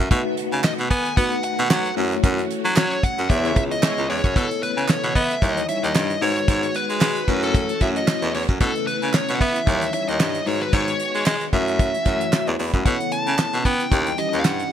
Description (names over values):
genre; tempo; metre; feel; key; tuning
early-eighties boogie funk; 113 BPM; 4/4; swing 56% on 16ths; unclear; A4 = 440 Hz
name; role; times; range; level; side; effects
phased string machine; sustained chords; 0.0-14.7 s; C#3 to F#4; -31 LUFS; right 1 dB; ensemble chorus, phaser
breathy baritone saxophone; bass; 0.0-14.6 s; C#2 to B3; -23 LUFS; equal; none
mellow tine electric piano; accompaniment; 0.1-14.7 s; G3 to B5; -28 LUFS; left 3 dB; medium stereo tremolo
damped 70s drum kit; drums; 0.1-14.7 s; handclaps, hi-hat, kick drum, snare drum; -22 LUFS; equal; none
nasal lead guitar with a parked wah; melody; 0.6-14.7 s; A4 to A5; -25 LUFS; left 1 dB; overdrive, digital delay
group handclap; percussion; 0.6-14.6 s; none; -32 LUFS; right 7 dB; none
warm horn section; second line; 3.4-4.2 s; G#3 to C#5; -32 LUFS; right 3 dB; none
room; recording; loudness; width
light reverb, studio reverb; bright 1980s-style digital production; -18 LUFS; side -10 dB against mid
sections
0.0-4.4 A section; 4.4-14.7 B section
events
band accent 2.2-4.4; tine electric piano fill 12.1-12.9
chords
0.1 B7; 2.0 F#m7; 3.3 E6; 4.4 B9sus4; 5.4 D#7b9; 6.2 G#m7; 7.3 F#m7; 8.6 B9sus4; 9.7 D#7b9; 10.5 G#m7; 11.5 F#m7; 12.9 B9sus4; 13.9 D#7b9